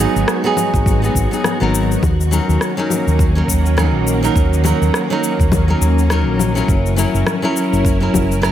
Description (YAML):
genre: sunset chillout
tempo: 103 BPM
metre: 4/4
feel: swing 58% on 16ths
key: unclear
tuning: A4 = 439 Hz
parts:
  - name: nylon-string guitar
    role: accompaniment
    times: 0.0-8.5 s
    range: F#3 to A#4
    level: -19 LUFS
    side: moving between left 6 dB and right 6 dB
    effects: auto-pan, ping-pong delay
  - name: soft string machine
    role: sustained chords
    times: 0.0-8.5 s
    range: D#3 to A#4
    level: -21 LUFS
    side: equal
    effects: ensemble chorus
  - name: fingered electric bass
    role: bass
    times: 0.0-8.5 s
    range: F#1 to D#2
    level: -16 LUFS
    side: equal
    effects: none
  - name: electronic cabasa, rim click and congas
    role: drums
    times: 0.2-8.5 s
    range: none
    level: -22 LUFS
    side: left 3 dB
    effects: small room ambience
  - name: electronic kick drum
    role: drums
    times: 0.7-8.3 s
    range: none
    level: -18 LUFS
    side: equal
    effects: small room ambience
room: light reverb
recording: none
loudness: -13 LUFS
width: side -11 dB against mid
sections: 0.0-8.5 A section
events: none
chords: 0.0 G#m7; 2.0 D#m7; 6.7 F#7